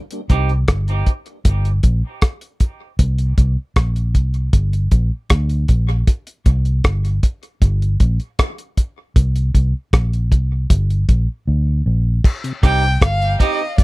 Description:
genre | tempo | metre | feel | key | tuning
dub reggae | 78 BPM | 4/4 | straight | C minor | A4 = 440 Hz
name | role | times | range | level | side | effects
cloth-damped thuddy drum kit | drums | 0.1-13.8 s | crash cymbal, hi-hat, kick drum, rim click | -14 LUFS | equal | none
clean electric guitar | accompaniment | 0.3-0.5, 12.6-13.6 s | C4 to G4 | -24 LUFS | right 7 dB | warbly pitch drift, dub echo
vintage muted fingered electric bass | bass | 0.3-13.8 s | G1 to D2 | -16 LUFS | equal | none
mellow tonewheel organ | accompaniment | 12.4-12.5 s | C3 | -34 LUFS | left 2 dB | slow rotary speaker, dub echo
rich violin | melody | 12.7-13.8 s | D5 to G5 | -20 LUFS | left 1 dB | dub echo
room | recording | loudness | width
little or no reverb | dry, close 1970s-style studio recording | -15 LUFS | side -22 dB against mid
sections
0.0-12.2 A section; 12.2-13.8 B section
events
break 0.0-12.2; drums muted 11.5-12.2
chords
0.0 Cm; 1.5 Gm; 3.0 Bbsus2; 4.5 Gm; 6.1 C5; 7.6 Gm; 9.2 Bbsus2; 10.7 Gm; 12.2 Cm

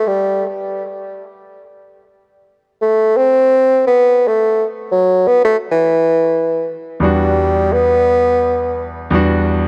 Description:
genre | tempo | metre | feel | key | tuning
amapiano | free time | none | none | E minor | A4 = 438 Hz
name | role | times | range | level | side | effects
warm bassoon | melody | 0.0-8.9 s | E3 to C4 | -15 LUFS | equal | tape echo
bright concert grand piano | accompaniment | 7.0-9.7 s | E2 to F#4 | -18 LUFS | equal | none
room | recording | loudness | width
light reverb, studio ambience | dark, warm production | -14 LUFS | mono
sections
0.0-7.0 A section; 7.0-9.7 B section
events
drop 0.0-7.0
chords
0.0 N.C.; 7.0 Em9

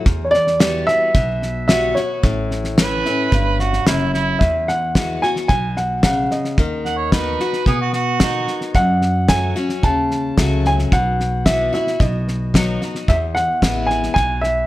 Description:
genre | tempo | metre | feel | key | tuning
honky-tonk and classic country | 111 BPM | 4/4 | straight | E major from 4.4 s | A4 = 436 Hz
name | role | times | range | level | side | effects
picked steel-string acoustic guitar | accompaniment | 0.0-14.7 s | E2 to F#4 | -23 LUFS | left 3 dB | none
upright bass | bass | 0.1-14.6 s | F#1 to B2 | -22 LUFS | equal | none
damped 70s drum kit | drums | 0.1-14.5 s | hi-hat, kick drum, snare drum | -18 LUFS | equal | none
dark upright piano | melody | 0.2-14.7 s | C#5 to A5 | -20 LUFS | right 1 dB | none
mellow harmonica | second line | 2.8-8.6 s | E4 to F#5 | -21 LUFS | right 5 dB | none
room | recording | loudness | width
light reverb | none | -15 LUFS | side -16 dB against mid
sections
0.0-4.4 A section; 4.4-14.7 B section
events
none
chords
0.1 Emadd9; 2.2 A; 4.4 Esus2; 6.6 B/D#; 8.7 F#m; 10.9 Bsus4; 12.0 B; 13.1 E

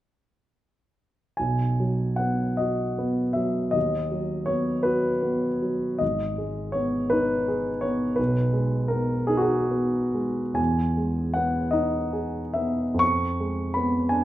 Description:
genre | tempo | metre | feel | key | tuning
classical, romantic nocturne for solo piano | 44-58 BPM (dotted quarters) | 6/8 | rubato | B major | A4 = 440 Hz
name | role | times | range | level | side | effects
dark grand piano | solo | 1.4-14.2 s | G#1 to C#6 | -22 LUFS | equal | none
room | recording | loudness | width
wet recital hall reverb, RT60 1.4 s | minimal, uncompressed stereo recording | -23 LUFS | side -14 dB against mid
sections
1.4-14.2 A section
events
none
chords
1.4 B; 3.8 B/D#; 6.0 G#m; 8.2 G#m/B; 10.6 Emaj7; 13.0 Fdim

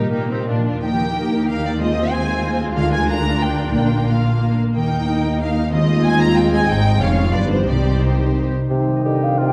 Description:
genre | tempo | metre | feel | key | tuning
classical, dramatic, fast romantic movement for symphony orchestra | 162-192 BPM | 3/4 | rubato | Eb major | A4 = 440 Hz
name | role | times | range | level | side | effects
rich symphonic violin section | melody | 0.0-8.5 s | F4 to Bb5 | -27 LUFS | equal | none
mellow hollow small flute group | second line | 0.0-0.7, 9.1-9.5 s | Bb4 to G5 | -27 LUFS | equal | none
warm symphonic violin section | second line | 0.0-8.5 s | D4 to Eb5 | -31 LUFS | equal | none
rich symphonic viola section | accompaniment | 0.0-8.5 s | G3 to Eb4 | -26 LUFS | equal | none
concert harp | arpeggios | 0.0-9.5 s | F2 to G5 | -25 LUFS | equal | none
warm symphonic cello section | bass | 0.0-8.5 s | D2 to C3 | -26 LUFS | equal | none
dark French horn section | sustained chords | 0.8-9.5 s | Eb3 to F4 | -28 LUFS | equal | none
rich studio double bass section | bass | 0.8-8.5 s | F1 to Eb2 | -24 LUFS | equal | none
mellow cor anglais | second line | 8.7-9.5 s | F4 to G4 | -28 LUFS | equal | none
warm clarinet | second line | 8.7-9.5 s | D4 to Eb4 | -26 LUFS | equal | none
warm bassoon | accompaniment | 8.7-9.5 s | C3 to D3 | -26 LUFS | equal | none
room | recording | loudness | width
wet scoring stage reverb, RT60 1.5 s | dark, warm production | -18 LUFS | mono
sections
0.8-8.7 A section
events
none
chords
0.5 Bb; 0.8 Eb; 1.8 Fm7/Eb; 2.8 Bb7/D; 3.7 Bb; 4.8 Eb; 5.7 Fm7/Eb; 6.7 Ab; 7.0 Db/F; 7.3 G7; 7.7 Cm

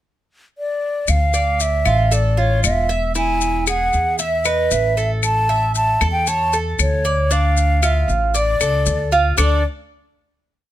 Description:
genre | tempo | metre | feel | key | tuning
latin, Cuban son and guajira | 116 BPM | 4/4 | straight | D harmonic minor | A4 = 438 Hz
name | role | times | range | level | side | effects
breathy mellow silver concert flute | melody | 0.6-9.6 s | C#5 to A5 | -19 LUFS | equal | none
upright bass | bass | 1.1-9.6 s | E1 to E2 | -19 LUFS | equal | none
claves | percussion | 1.1-9.5 s | none | -24 LUFS | left 9 dB | none
maracas | percussion | 1.1-9.5 s | none | -26 LUFS | left 7 dB | none
Cuban tres | arpeggios | 1.3-9.6 s | D4 to E5 | -22 LUFS | right 4 dB | none
room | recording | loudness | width
little or no reverb | close, detailed microphones | -15 LUFS | side -12 dB against mid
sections
0.0-1.1 pickup bar; 1.1-9.4 A section; 9.4-10.7 final chord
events
none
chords
0.0 N.C.; 1.1 Dmadd9; 3.2 E; 5.2 A; 7.3 Dm; 9.4 D5

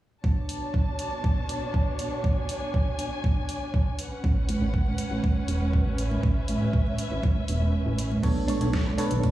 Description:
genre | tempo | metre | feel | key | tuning
nu-disco, nu disco | 120 BPM | 4/4 | straight | B dorian | A4 = 441 Hz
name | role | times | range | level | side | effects
warm studio string section | sustained chords | 0.2-9.3 s | B2 to A5 | -32 LUFS | equal | sidechain pumping
electronic kick drum | drums | 0.2-9.3 s | none | -24 LUFS | equal | overdrive
pop drum kit | drums | 0.5-9.3 s | crash cymbal, hi-hat, snare drum | -37 LUFS | right 1 dB | overdrive
chorused synth bass | bass | 4.2-9.2 s | E1 to B1 | -26 LUFS | equal | none
congas and tambourine | percussion | 4.5-9.3 s | none | -32 LUFS | right 1 dB | none
bell-like tine electric piano | accompaniment | 8.2-9.3 s | B3 to C#5 | -29 LUFS | right 2 dB | tape echo
direct-recorded clean electric guitar | riff | 8.5-9.3 s | D4 to C#5 | -33 LUFS | right 3 dB | lush chorus, low-pass filter, tape echo
room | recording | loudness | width
light reverb, digital ambience | played on a big sound system in a bare room, large studio reverb, small room ambience | -24 LUFS | side -14 dB against mid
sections
0.2-8.2 A section; 8.2-9.3 B section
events
kick drops out 7.7-8.2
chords
0.2 Bm9; 4.0 A69; 8.2 Bm9

